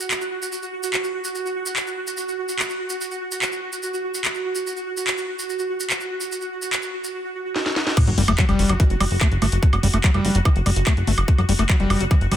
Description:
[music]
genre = psychedelic trance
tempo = 145 BPM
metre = 4/4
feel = straight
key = F# phrygian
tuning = A4 = 440 Hz
[part]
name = pulsing gated texture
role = sustained chords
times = 0.0-12.4 s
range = F#4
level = -27 LUFS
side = right 2 dB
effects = chorus, built-in reverb, sidechain pumping
[part]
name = maracas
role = percussion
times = 0.0-7.1 s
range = none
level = -31 LUFS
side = right 3 dB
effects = none
[part]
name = drum and bass drum kit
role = drums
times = 0.1-12.4 s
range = crash cymbal, handclaps, hi-hat, snare drum, woodblock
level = -25 LUFS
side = equal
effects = none
[part]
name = electronic kick drum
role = drums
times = 8.0-12.2 s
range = none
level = -17 LUFS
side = equal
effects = none
[part]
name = sub drop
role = sound effects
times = 8.0-9.6 s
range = none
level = -27 LUFS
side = equal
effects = none
[part]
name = screaming distorted acid line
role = riff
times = 8.1-12.4 s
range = E3 to A3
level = -24 LUFS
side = moving between left 6 dB and right 5 dB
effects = distortion, chorus, auto-pan, sidechain pumping, digital delay
[part]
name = plucky analog bass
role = bass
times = 8.1-12.4 s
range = F#1 to G1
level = -20 LUFS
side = equal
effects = none
[sound]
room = little or no reverb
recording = none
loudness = -19 LUFS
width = side -11 dB against mid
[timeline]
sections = 0.0-8.0 A section; 8.0-12.4 B section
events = drum fill 7.6-8.0; drop 8.0-12.4; impact 8.0-9.6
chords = none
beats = 0.11 0.52 0.94 | 1.35 1.76 2.18 2.59 | 3.00 3.42 3.83 4.25 | 4.66 5.07 5.49 5.90 | 6.32 6.73 7.14 7.56 | 7.97 8.38 8.80 9.21 | 9.62 10.04 10.45 10.87 | 11.28 11.69 12.11

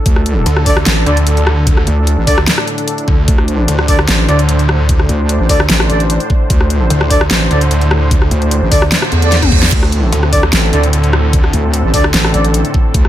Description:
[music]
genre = heavy wobble dubstep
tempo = 149 BPM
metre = 4/4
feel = half-time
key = unclear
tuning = A4 = 440 Hz
[part]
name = supersaw pad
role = sustained chords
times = 0.0-13.1 s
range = A2 to C5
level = -19 LUFS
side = equal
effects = sidechain pumping, low-pass filter
[part]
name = wobble bass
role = bass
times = 0.1-13.1 s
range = A1 to E2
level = -13 LUFS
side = equal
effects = chorus, overdrive
[part]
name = dubstep drum kit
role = drums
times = 0.1-13.1 s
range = crash cymbal, hi-hat, rim click, snare drum, toms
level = -16 LUFS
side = left 1 dB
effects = overdrive, small room ambience
[part]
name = electronic kick drum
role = drums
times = 0.1-13.0 s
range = none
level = -12 LUFS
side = equal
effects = overdrive, small room ambience
[part]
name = snarling distorted saw bass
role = bass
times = 0.5-12.1 s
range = D2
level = -13 LUFS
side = equal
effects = distortion, overdrive
[part]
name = mellow brass ensemble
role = stabs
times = 0.7-12.4 s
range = D4 to D5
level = -19 LUFS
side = equal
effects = tape echo
[part]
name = reverse cymbal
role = sound effects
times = 9.1-9.7 s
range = none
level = -20 LUFS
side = right 4 dB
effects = none
[sound]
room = little or no reverb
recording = none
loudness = -9 LUFS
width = side -12 dB against mid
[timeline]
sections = 0.0-13.1 A section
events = reverse cymbal 9.1-9.7; drum fill 9.3-9.7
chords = 0.0 D5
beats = | 0.06 0.46 0.86 1.27 | 1.67 2.07 2.47 2.88 | 3.28 3.68 4.08 4.49 | 4.89 5.29 5.70 6.10 | 6.50 6.90 7.31 7.71 | 8.11 8.51 8.92 9.32 | 9.72 10.12 10.53 10.93 | 11.33 11.73 12.14 12.54 | 12.94

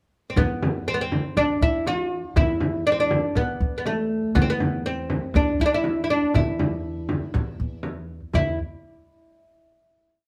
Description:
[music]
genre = Arabic maqam ensemble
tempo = 120 BPM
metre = 4/4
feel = straight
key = E maqam bayati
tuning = A4 = 439 Hz
[part]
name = oud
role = melody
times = 0.3-8.6 s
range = A3 to F#4-50c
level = -26 LUFS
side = equal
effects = none
[part]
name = upright bass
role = bass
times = 0.4-8.6 s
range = E2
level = -28 LUFS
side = equal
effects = none
[part]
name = frame drum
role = percussion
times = 0.4-8.6 s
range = none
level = -29 LUFS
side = equal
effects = none
[sound]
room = moderate large studio reverb, RT60 0.9 s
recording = band playing live in one room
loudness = -24 LUFS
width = mono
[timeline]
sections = 0.0-0.4 pickup bar; 0.4-8.3 A section; 8.3-10.3 final note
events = none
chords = none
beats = | 0.37 0.86 1.36 1.86 | 2.35 2.85 3.35 3.85 | 4.35 4.85 5.35 5.85 | 6.34 6.84 7.34 7.84 | 8.34

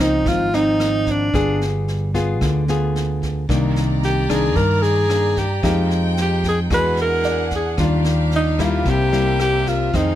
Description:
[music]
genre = bossa nova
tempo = 112 BPM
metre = 4/4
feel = straight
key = unclear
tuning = A4 = 440 Hz
[part]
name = warm alto saxophone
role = melody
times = 0.0-10.2 s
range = D4 to B4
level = -20 LUFS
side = right 1 dB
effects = none
[part]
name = nylon-string guitar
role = accompaniment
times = 0.0-10.2 s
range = F2 to Ab4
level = -21 LUFS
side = left 3 dB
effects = none
[part]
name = fingered electric bass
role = bass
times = 0.0-10.2 s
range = G1 to G2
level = -21 LUFS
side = right 1 dB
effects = none
[part]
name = jazz brush drum kit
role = drums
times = 0.3-10.1 s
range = kick drum, rim click, snare drum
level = -27 LUFS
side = right 1 dB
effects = none
[part]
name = warm studio violin section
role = sustained chords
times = 3.5-10.2 s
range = C4 to Bb5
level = -29 LUFS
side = equal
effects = none
[part]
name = warm grand piano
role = accompaniment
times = 4.6-8.0 s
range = D5 to Bb5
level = -31 LUFS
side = right 2 dB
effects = none
[sound]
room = light reverb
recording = none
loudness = -16 LUFS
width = side -12 dB against mid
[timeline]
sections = 0.0-10.2 A section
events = none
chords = 0.0 Dbmaj9; 1.3 G7b9; 3.5 Cm9; 5.6 Fm9; 6.7 E9; 7.8 Ebmaj9; 8.9 C7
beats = 0.26 0.79 | 1.33 1.87 2.41 2.94 | 3.48 4.02 4.56 5.10 | 5.63 6.17 6.71 7.25 | 7.79 8.32 8.86 9.40 | 9.94

